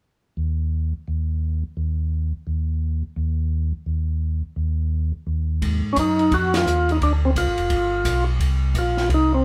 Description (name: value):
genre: soul jazz organ trio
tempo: 172 BPM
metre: 4/4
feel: swing 63% on 8ths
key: Ab mixolydian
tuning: A4 = 443 Hz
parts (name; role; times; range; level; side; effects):
- mellow tonewheel organ; bass; 0.4-9.4 s; F1 to Ab2; -24 LUFS; equal; chorus vibrato, slow rotary speaker
- compact cocktail drum kit; drums; 5.6-9.2 s; hi-hat, kick drum, ride cymbal, snare drum; -29 LUFS; equal; none
- percussive tonewheel organ; melody; 5.9-9.4 s; C4 to Gb4; -22 LUFS; equal; slow rotary speaker
room: light reverb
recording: band playing live in one room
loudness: -22 LUFS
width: mono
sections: 0.0-5.6 A section; 5.6-9.4 B section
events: band accent 6.5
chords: 0.0 N.C.; 5.6 Ab5; 7.0 Dm7b5; 7.7 G7; 8.4 Bbsus2